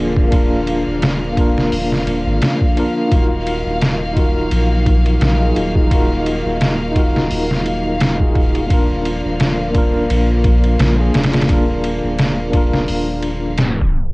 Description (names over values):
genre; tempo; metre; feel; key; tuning
trip hop; 86 BPM; 4/4; swing 55% on 16ths; Eb harmonic minor; A4 = 440 Hz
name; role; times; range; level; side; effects
tine electric piano; accompaniment; 0.0-14.1 s; Bb3 to Bb4; -20 LUFS; equal; fast stereo tremolo, cassette tape, tape echo
rich studio string section; sustained chords; 0.0-14.1 s; D3 to F5; -22 LUFS; equal; cassette tape
soft dub sub bass; bass; 0.0-14.1 s; Eb1 to Bb1; -20 LUFS; equal; none
trip hop sampler-style drum kit; drums; 0.2-14.1 s; hi-hat, kick drum, ride cymbal, snare drum; -17 LUFS; equal; cassette tape
room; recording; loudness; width
little or no reverb; home recording on cassette, vinyl crackle, tape stop, nothing above 10.6 kHz; -14 LUFS; side -25 dB against mid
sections
0.0-14.1 A section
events
tape stop 13.6-14.1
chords
0.0 Bb/Eb; 3.1 Ebmadd9; 8.7 Bb/Eb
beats
| 0.33 1.02 1.72 2.42 | 3.12 3.81 4.51 5.21 | 5.91 6.60 7.30 8.00 | 8.70 9.39 10.09 10.79 | 11.49 12.19 12.88 13.58